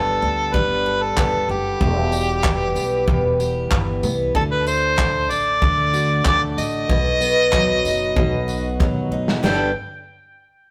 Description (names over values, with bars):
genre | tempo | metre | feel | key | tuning
acoustic pop | 94 BPM | 4/4 | straight | G major | A4 = 440 Hz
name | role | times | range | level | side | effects
mellow harmonica | melody | 0.0-9.7 s | G4 to G5 | -23 LUFS | equal | tape echo
picked steel-string acoustic guitar | accompaniment | 0.0-9.7 s | E2 to A4 | -25 LUFS | equal | none
upright bass | bass | 0.0-9.7 s | E1 to D#2 | -28 LUFS | equal | none
natural country drum kit | drums | 0.5-9.6 s | crash cymbal, handclaps, kick drum, snare drum, tambourine | -25 LUFS | equal | none
group handclap | percussion | 1.2-9.7 s | none | -44 LUFS | equal | none
room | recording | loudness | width
light reverb | rough rehearsal-room recording | -19 LUFS | mono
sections
0.0-9.4 A section; 9.4-10.7 B section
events
drum fill 8.8-9.4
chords
0.0 Gadd9; 1.8 Em; 4.3 D; 6.9 B; 9.4 Gadd9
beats
0.54 1.18 | 1.81 2.44 3.08 3.71 | 4.35 4.99 5.62 6.26 | 6.89 7.53 8.16 8.80 | 9.44